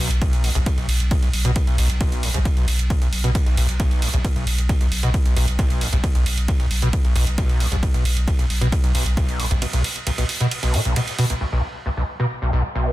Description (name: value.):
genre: driving peak-time techno.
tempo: 134 BPM.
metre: 4/4.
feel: straight.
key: unclear.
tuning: A4 = 440 Hz.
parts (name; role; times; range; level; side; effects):
overdriven acid bass; riff; 0.0-12.9 s; A1 to B2; -23 LUFS; equal; distortion, ensemble chorus, sidechain pumping.
warm sub bass; bass; 0.0-9.6 s; B1; -22 LUFS; equal; tube saturation, sidechain pumping, low-pass filter.
punchy analog drum machine; drums; 0.1-11.4 s; hi-hat, ride cymbal; -27 LUFS; right 3 dB; overdrive.
electronic kick drum; drums; 0.2-9.3 s; none; -20 LUFS; equal; none.
room: light reverb.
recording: dense, heavily limited modern master.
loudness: -18 LUFS.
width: side -16 dB against mid.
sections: 0.0-11.4 A section; 11.4-12.9 B section.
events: drop 0.0-11.4.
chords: none.